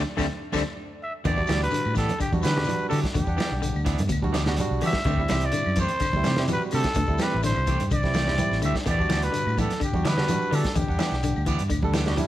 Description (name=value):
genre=afrobeat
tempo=126 BPM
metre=4/4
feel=straight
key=E minor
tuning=A4 = 441 Hz
part: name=barky tine electric piano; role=accompaniment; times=0.0-12.3 s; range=G3 to F#5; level=-32 LUFS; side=right 3 dB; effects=overdrive
part: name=fingered electric bass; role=bass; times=0.0-12.2 s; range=A1 to E3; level=-26 LUFS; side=equal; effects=none
part: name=semi-hollow electric guitar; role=arpeggios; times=0.2-12.3 s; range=B2 to A3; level=-32 LUFS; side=left 5 dB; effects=none
part: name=electric guitar at the edge of break-up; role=stabs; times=0.2-12.2 s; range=E3 to G4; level=-34 LUFS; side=right 5 dB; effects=none
part: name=crunchy breakbeat drum kit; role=drums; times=0.2-12.3 s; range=hi-hat, kick drum, snare drum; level=-30 LUFS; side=equal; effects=none
part: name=claves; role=percussion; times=0.2-12.2 s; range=none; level=-42 LUFS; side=left 5 dB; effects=none
part: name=congas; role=percussion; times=0.2-12.3 s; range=none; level=-32 LUFS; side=right 3 dB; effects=none
part: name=shekere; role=percussion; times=0.2-12.3 s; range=none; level=-37 LUFS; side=left 2 dB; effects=none
part: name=growling trumpet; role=melody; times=1.0-11.5 s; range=G4 to E5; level=-28 LUFS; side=equal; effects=none
room=light reverb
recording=none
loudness=-22 LUFS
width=side -13 dB against mid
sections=0.0-1.3 A section; 1.3-12.3 B section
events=band accent 0.0-1.3; drum fill 0.9-1.3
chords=0.0 D7sus4; 1.3 Em7; 5.1 D7sus4; 8.9 Em7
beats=0.30 0.78 | 1.26 1.73 2.21 2.68 | 3.16 3.63 4.11 4.58 | 5.06 5.53 6.01 6.48 | 6.96 7.43 7.91 8.38 | 8.86 9.33 9.81 10.28 | 10.76 11.23 11.71 12.18